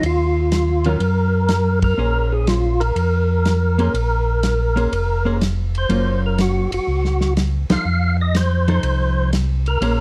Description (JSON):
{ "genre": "soul jazz organ trio", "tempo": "123 BPM", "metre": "4/4", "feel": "swing 68% on 8ths", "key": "Bb minor", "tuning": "A4 = 440 Hz", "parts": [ { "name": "percussive tonewheel organ", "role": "melody", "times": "0.0-10.0 s", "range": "F4 to F5", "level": "-24 LUFS", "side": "equal", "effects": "slow rotary speaker, overdrive, chorus vibrato" }, { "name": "mellow tonewheel organ", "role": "bass", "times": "0.0-10.0 s", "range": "F1 to Gb2", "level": "-21 LUFS", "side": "equal", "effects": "slow rotary speaker" }, { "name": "warm soul drum kit", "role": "drums", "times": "0.0-10.0 s", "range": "hi-hat, kick drum, ride cymbal, snare drum", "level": "-29 LUFS", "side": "equal", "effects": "none" }, { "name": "archtop guitar, miked and amplified", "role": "accompaniment", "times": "0.9-10.0 s", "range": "Eb3 to C5", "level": "-25 LUFS", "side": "equal", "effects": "none" } ], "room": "light reverb", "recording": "dark, warm production", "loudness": "-19 LUFS", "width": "mono", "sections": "0.0-10.0 A section", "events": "band accent 1.7, 7.6", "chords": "0.0 Ebmadd9; 2.0 Bbm9; 5.9 Gbmaj7; 7.9 F7" }